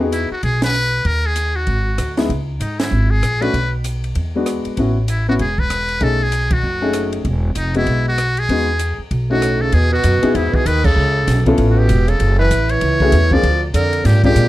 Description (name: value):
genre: jazz, small-group swing and bop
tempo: 194 BPM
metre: 4/4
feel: swing 61% on 8ths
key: E major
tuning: A4 = 440 Hz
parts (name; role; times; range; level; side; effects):
- warm upright piano; accompaniment; 0.0-14.5 s; G#3 to D#5; -19 LUFS; left 2 dB; none
- upright bass; bass; 0.0-14.5 s; E1 to A#2; -17 LUFS; equal; none
- trumpet with metal mute; melody; 0.1-14.5 s; D#4 to D5; -20 LUFS; left 1 dB; none
- compact cocktail drum kit; drums; 0.1-14.4 s; crash cymbal, hi-hat, kick drum, ride cymbal, rim click, snare drum; -24 LUFS; equal; none
- warm tenor saxophone; second line; 9.3-14.5 s; G#2 to F3; -21 LUFS; right 3 dB; none
room: light reverb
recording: dark, warm production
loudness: -14 LUFS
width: side -15 dB against mid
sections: 0.0-9.7 A section; 9.7-14.5 B section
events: band accent 0.6, 2.8, 6.5, 10.8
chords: 0.0 Emaj7; 1.1 D#sus4; 1.7 G#5; 2.3 C#m; 3.5 N.C.; 4.2 E9; 4.8 A69; 6.0 B13; 7.2 Emaj7; 9.1 B7; 9.7 Emaj9; 11.0 C#7alt; 12.2 F#m9; 13.4 A#9